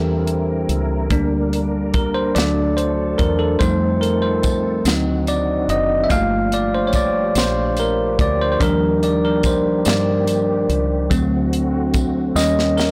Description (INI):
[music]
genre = slow gospel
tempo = 48 BPM (dotted quarters)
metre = 6/8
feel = straight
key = G minor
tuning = A4 = 439 Hz
[part]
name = bell-like tine electric piano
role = accompaniment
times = 0.0-12.9 s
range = E3 to F5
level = -21 LUFS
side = equal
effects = none
[part]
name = dark French horn section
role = sustained chords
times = 0.0-12.9 s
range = D3 to Eb4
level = -32 LUFS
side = equal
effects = none
[part]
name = tonewheel organ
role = sustained chords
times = 0.0-12.9 s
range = D3 to Bb4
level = -30 LUFS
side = equal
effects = slow rotary speaker, chorus vibrato
[part]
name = deep dub fingered electric bass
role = bass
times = 0.0-12.9 s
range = F#1 to G2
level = -26 LUFS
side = equal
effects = none
[part]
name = tight funk drum kit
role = drums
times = 0.3-12.9 s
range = hi-hat, kick drum, snare drum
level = -24 LUFS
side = equal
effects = none
[part]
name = tambourine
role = percussion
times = 3.6-12.9 s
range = none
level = -36 LUFS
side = equal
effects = none
[sound]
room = moderate plate reverb, RT60 2.0 s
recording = blown-out, overdriven recording, overdrive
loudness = -18 LUFS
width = mono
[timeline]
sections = 0.0-12.9 A section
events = tine electric piano solo 0.0-12.9; drum fill 12.4-12.9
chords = 0.0 C7; 1.1 Gm/D; 2.4 D; 3.6 F7; 4.9 D7b9; 6.1 Gm7; 8.6 Ebmaj7; 11.1 D7; 12.4 Eb7